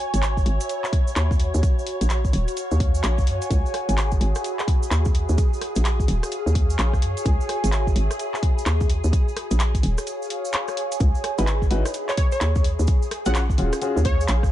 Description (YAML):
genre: UK garage, two-step garage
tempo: 128 BPM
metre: 4/4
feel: swing 63% on 16ths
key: unclear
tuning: A4 = 440 Hz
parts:
  - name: soft string machine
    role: sustained chords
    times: 0.0-14.5 s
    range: G#4 to C#5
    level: -32 LUFS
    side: left 1 dB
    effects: phaser, ensemble chorus, sidechain pumping
  - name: warbly tape-like pad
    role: texture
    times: 0.0-14.5 s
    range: F#4 to B5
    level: -31 LUFS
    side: equal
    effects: chorus, built-in reverb, sidechain pumping
  - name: hollow knocking FM bass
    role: bass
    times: 0.1-14.5 s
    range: D#1 to F#2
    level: -21 LUFS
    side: equal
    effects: none
  - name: house drum kit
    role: drums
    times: 0.1-14.5 s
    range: handclaps, hi-hat, rim click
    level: -30 LUFS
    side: left 1 dB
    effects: small room ambience
  - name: cabasa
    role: percussion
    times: 0.1-14.5 s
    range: none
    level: -38 LUFS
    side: right 6 dB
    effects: none
  - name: electronic kick drum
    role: drums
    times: 0.4-14.5 s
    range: none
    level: -21 LUFS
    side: equal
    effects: small room ambience
  - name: warm concert grand piano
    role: stabs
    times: 11.4-14.0 s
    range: C#4 to B4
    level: -28 LUFS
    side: left 3 dB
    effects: tape echo
  - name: plucky unison lead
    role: melody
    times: 12.1-14.2 s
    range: C#5 to F#5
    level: -30 LUFS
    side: equal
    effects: tape echo
room: little or no reverb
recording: dark, warm production, nothing above 10.5 kHz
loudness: -20 LUFS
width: side -13 dB against mid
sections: 0.0-14.5 A section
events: break 10.1-11.0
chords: 0.0 C#m11; 1.4 D#m11; 3.5 C#m11; 5.1 D#m11; 7.3 C#m11; 8.9 D#m11; 11.0 C#m11; 12.6 D#m11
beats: 0.23 0.69 1.16 | 1.63 2.10 2.57 3.04 | 3.51 3.98 4.44 4.91 | 5.38 5.85 6.32 6.79 | 7.26 7.72 8.19 8.66 | 9.13 9.60 10.07 10.54 | 11.01 11.47 11.94 12.41 | 12.88 13.35 13.82 14.29